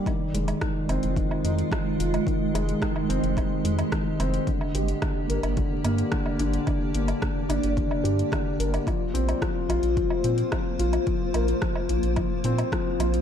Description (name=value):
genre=piano and strings electronica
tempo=109 BPM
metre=4/4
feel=straight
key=F dorian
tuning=A4 = 440 Hz
part: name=granular cloud pad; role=sustained chords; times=0.0-13.2 s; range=Ab3 to Eb5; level=-31 LUFS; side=right 2 dB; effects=built-in reverb, sidechain pumping
part: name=felt-muted upright piano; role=riff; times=0.0-13.2 s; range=D3 to Bb4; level=-27 LUFS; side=left 2 dB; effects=tape echo
part: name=deep house drum kit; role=drums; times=0.1-13.2 s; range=hi-hat, rim click, woodblock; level=-35 LUFS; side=right 1 dB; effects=overdrive
part: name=electronic kick drum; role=drums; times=0.1-12.8 s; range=none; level=-30 LUFS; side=equal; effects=overdrive
part: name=round analog bass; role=bass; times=0.3-13.2 s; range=F1 to Bb2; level=-26 LUFS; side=equal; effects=sidechain pumping
room=light reverb, digital ambience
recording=dark, warm production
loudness=-23 LUFS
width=side -8 dB against mid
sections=0.0-13.2 A section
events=none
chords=0.1 Fm7; 4.5 Gm; 8.9 Bbsus2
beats=| 0.06 0.61 1.17 1.72 | 2.27 2.82 3.37 3.92 | 4.47 5.02 5.57 6.12 | 6.67 7.22 7.77 8.32 | 8.87 9.42 9.97 10.52 | 11.07 11.62 12.18 12.72